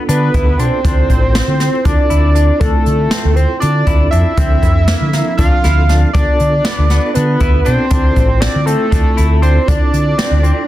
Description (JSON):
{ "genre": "progressive instrumental, band music in an uneven meter", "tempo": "238 BPM (eighths)", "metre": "7/8", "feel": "straight", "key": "D minor", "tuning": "A4 = 440 Hz", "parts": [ { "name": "mellow tonewheel organ", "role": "accompaniment", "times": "0.0-10.7 s", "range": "F3 to A4", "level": "-23 LUFS", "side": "right 3 dB", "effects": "chorus vibrato, fast rotary speaker" }, { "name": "semi-hollow electric guitar", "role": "arpeggios", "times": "0.0-10.6 s", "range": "Bb3 to E4", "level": "-23 LUFS", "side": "left 6 dB", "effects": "tape echo" }, { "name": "fat analog lead", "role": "melody", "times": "0.1-10.7 s", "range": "A4 to F5", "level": "-18 LUFS", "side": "right 2 dB", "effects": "chorus" }, { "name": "warm alto saxophone", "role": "second line", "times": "0.1-10.7 s", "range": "A3 to F4", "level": "-23 LUFS", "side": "left 2 dB", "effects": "none" }, { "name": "fingered electric bass", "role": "bass", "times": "0.1-10.5 s", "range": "A1 to D3", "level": "-13 LUFS", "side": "equal", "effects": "none" }, { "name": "jazz brush drum kit", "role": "drums", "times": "0.1-10.6 s", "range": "hi-hat, kick drum, snare drum", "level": "-16 LUFS", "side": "equal", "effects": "soft clipping on snare" } ], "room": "light reverb", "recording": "dense, heavily limited modern master", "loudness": "-10 LUFS", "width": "side -14 dB against mid", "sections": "0.0-10.7 A section", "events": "none", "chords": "0.0 Dm13; 0.8 Dm7; 4.4 Bbmaj9/D; 6.1 Dm13; 7.9 Dm7" }